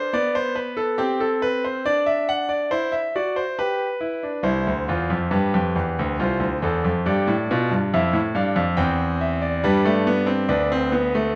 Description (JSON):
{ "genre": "classical, baroque-style 4-part fugue for grand piano", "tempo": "70 BPM", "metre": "3/4", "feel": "straight", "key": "C major", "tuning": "A4 = 440 Hz", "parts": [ { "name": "bright concert grand piano", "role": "solo", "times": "0.0-11.4 s", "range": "C2 to G5", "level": "-22 LUFS", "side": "equal", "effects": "none" } ], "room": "moderate recital hall reverb, RT60 1.6 s", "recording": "none", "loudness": "-22 LUFS", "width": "mono", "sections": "0.0-4.5 A section; 4.5-11.4 B section", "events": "none", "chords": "0.0 G (rootless); 1.0 Am7/C; 1.9 D7; 3.6 G; 4.5 C; 6.2 Dm7/C; 7.1 G7; 8.8 C/E; 9.6 G" }